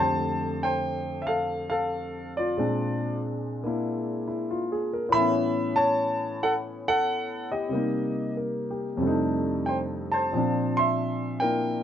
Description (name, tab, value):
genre	solo jazz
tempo	93 BPM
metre	4/4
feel	swing 69% on 8ths, rubato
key	F major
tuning	A4 = 444 Hz
part	warm grand piano	solo	0.0-11.8 s	F2 to C6	-24 LUFS	equal	none
room	light reverb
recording	nothing above 7.7 kHz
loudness	-24 LUFS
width	side -9 dB against mid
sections	0.0-11.8 A section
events	none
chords	0.0 F69; 2.6 Bb9; 5.1 A69; 7.7 Cm7; 9.0 F13; 10.3 Bbmaj9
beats	0.63 1.28 1.93 | 2.57 3.21 3.85 4.50 | 5.14 5.79 6.43 7.07 | 7.72 8.38 9.03 9.69 | 10.34 10.99 11.64